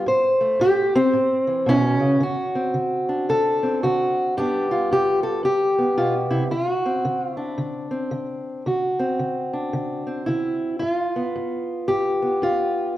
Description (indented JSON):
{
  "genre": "acoustic country blues, solo or duo",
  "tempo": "112 BPM",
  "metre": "4/4",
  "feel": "swing 61% on 8ths",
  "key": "D mixolydian",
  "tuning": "A4 = 439 Hz",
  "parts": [
    { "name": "fingerpicked steel-string acoustic guitar", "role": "solo", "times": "0.0-13.0 s", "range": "G2 to C5", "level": "-20 LUFS", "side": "equal", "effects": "none" }
  ],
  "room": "wet recital hall reverb, RT60 1.4 s",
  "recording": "recorded in a church or concert hall",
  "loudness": "-20 LUFS",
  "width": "side -14 dB against mid",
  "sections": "0.0-2.2 A section; 2.2-13.0 B section",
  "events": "steel-string acoustic guitar solo 0.0-2.2",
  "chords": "0.1 A; 2.2 D7; 4.4 G7; 6.5 D7; 10.8 G7",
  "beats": "| 0.06 0.59 1.13 1.67 | 2.21 2.74 3.28 3.82 | 4.36 4.89 5.43 5.97 | 6.51 7.05 7.59 8.12 | 8.66 9.20 9.74 10.28 | 10.81 11.35 11.89 12.43 | 12.97"
}